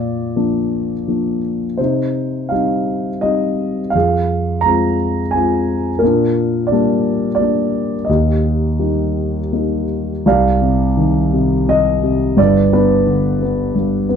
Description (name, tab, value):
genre	classical, lyrical solo piano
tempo	85 BPM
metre	3/4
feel	uneven beats, rubato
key	Eb major, C minor from 10.2 s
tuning	A4 = 440 Hz
part	dark concert grand piano	solo	0.0-14.2 s	G1 to Bb5	-14 LUFS	equal	none
room	light reverb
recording	dark, warm production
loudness	-14 LUFS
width	side -7 dB against mid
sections	0.0-10.2 A section; 10.2-14.2 B section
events	none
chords	0.0 Bb; 1.8 Cm; 3.9 Fm; 6.0 Bb6; 8.1 Eb; 10.2 Cmadd9; 12.4 G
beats	0.35 1.07 | 1.79 2.51 3.23 | 3.95 4.65 5.33 | 6.02 6.70 7.39 | 8.08 8.78 9.51 | 10.25 10.96 11.68 | 12.38 13.07 13.75